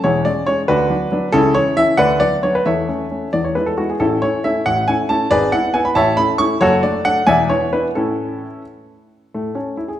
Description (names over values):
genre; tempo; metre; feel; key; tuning
classical-period piano sonatina; 91 BPM (dotted quarters); 6/8; rubato; A major; A4 = 439 Hz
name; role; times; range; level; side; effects
warm baby grand piano; solo; 0.0-10.0 s; E1 to C#6; -14 LUFS; equal; none
room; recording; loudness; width
wet recital hall reverb, RT60 1.8 s; none; -14 LUFS; side -11 dB against mid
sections
0.0-9.3 A section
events
none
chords
0.0 C#m/E; 0.7 Bm/D; 1.3 C#m; 2.0 Bm/D; 2.7 A/E; 3.3 E; 4.0 A; 5.3 E/G#; 6.0 A; 6.6 D/F#; 7.3 E5; 8.0 A